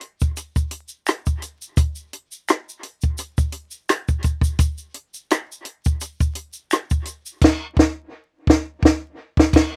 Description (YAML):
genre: R&B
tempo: 85 BPM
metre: 4/4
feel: swing 54% on 16ths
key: none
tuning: none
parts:
  - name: compact cocktail drum kit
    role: drums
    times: 0.0-9.8 s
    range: crash cymbal, hi-hat, kick drum, rim click, snare drum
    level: -19 LUFS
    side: equal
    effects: none
  - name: tube shaker and finger snaps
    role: percussion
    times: 0.2-7.4 s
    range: none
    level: -32 LUFS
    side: equal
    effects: none
room: little or no reverb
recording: recorded outdoors, with no room sound, vinyl crackle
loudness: -22 LUFS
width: mono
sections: 0.0-9.8 A section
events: band accent 7.4-9.8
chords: none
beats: 0.36 1.07 | 1.77 2.48 3.18 3.89 | 4.60 5.30 6.01 6.71 | 7.42 8.12 8.83 9.54